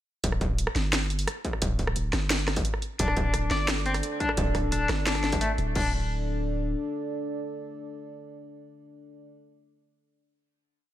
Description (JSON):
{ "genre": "half-time drum and bass", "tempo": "174 BPM", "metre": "4/4", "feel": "half-time", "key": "unclear", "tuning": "A4 = 438 Hz", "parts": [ { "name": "long sustained 808-style bass", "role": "bass", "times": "0.2-6.8 s", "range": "D1 to G1", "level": "-29 LUFS", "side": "equal", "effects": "none" }, { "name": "drum and bass drum kit", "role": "drums", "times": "0.2-5.8 s", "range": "crash cymbal, hi-hat, rim click, snare drum", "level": "-29 LUFS", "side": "right 1 dB", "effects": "small room reverb" }, { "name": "electronic kick drum", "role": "drums", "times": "0.2-5.8 s", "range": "none", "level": "-29 LUFS", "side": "equal", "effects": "distortion, small room reverb" }, { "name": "dark analog pad", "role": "sustained chords", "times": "3.0-9.3 s", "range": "D4 to D5", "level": "-34 LUFS", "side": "equal", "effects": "chorus, sidechain pumping" }, { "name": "clean electric guitar", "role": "arpeggios", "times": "3.0-5.9 s", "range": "A3 to D5", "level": "-30 LUFS", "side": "left 3 dB", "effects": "tremolo, tape echo" } ], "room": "light reverb", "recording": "none", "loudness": "-25 LUFS", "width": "side -12 dB against mid", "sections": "0.2-5.8 drop; 5.8-8.5 final chord", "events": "drop 0.2-5.8", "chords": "0.2 D5" }